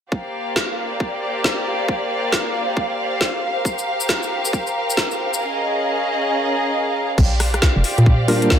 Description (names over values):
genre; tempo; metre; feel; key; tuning
UK garage, two-step garage; 136 BPM; 4/4; swing 63% on 16ths; Bb major; A4 = 440 Hz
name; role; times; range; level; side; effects
rich symphonic violin section; sustained chords; 0.1-8.6 s; Bb3 to F5; -21 LUFS; equal; sidechain pumping
electronic kick drum; drums; 0.1-8.6 s; none; -19 LUFS; equal; high-pass filter on kick, studio reverb
garage drum kit; drums; 0.6-8.6 s; crash cymbal, hi-hat, rim click, snare drum; -23 LUFS; equal; studio reverb
cabasa; percussion; 3.7-5.4 s; none; -27 LUFS; left 4 dB; none
hollow knocking FM bass; bass; 7.2-8.6 s; F1 to Bb2; -17 LUFS; equal; tube saturation, sidechain pumping
tine electric piano; stabs; 8.3-8.6 s; G3 to Bb4; -16 LUFS; equal; medium tremolo
room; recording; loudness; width
wet plate reverb, RT60 1.5 s, digital ambience; dreamy mix soaked in reverb; -18 LUFS; side -9 dB against mid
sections
0.1-7.2 A section; 7.2-8.6 B section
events
none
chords
0.1 Bb6; 3.4 Fsus24/G; 5.4 Db69; 7.2 Bb6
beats
| 0.12 0.56 1.00 1.44 | 1.89 2.33 2.77 3.21 | 3.65 4.09 4.53 4.97 | 5.42 5.86 6.30 6.74 | 7.18 7.62 8.06 8.50